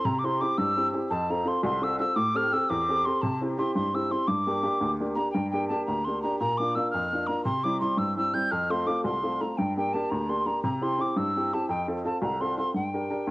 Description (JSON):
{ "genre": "celtic folk, Celtic jig", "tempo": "114 BPM (dotted quarters)", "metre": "6/8", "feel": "straight", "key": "G dorian", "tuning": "A4 = 444 Hz", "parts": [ { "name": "mellow hollow mid whistle", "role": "melody", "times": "0.0-13.3 s", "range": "G5 to G6", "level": "-27 LUFS", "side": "equal", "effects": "cassette tape" }, { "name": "warm upright piano", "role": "accompaniment", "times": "0.0-13.3 s", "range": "C2 to Bb4", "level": "-28 LUFS", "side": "equal", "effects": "cassette tape" } ], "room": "moderate spring reverb, RT60 1.8 s, studio ambience", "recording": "home recording on cassette", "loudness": "-24 LUFS", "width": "side -20 dB against mid", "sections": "0.0-5.3 A section; 5.3-13.3 B section", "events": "none", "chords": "0.0 C; 1.1 F; 2.2 Am7; 3.2 C; 4.3 Gm; 6.4 Bb; 7.5 C; 8.5 F; 9.6 Gm; 10.6 C; 11.7 F; 12.7 Gm" }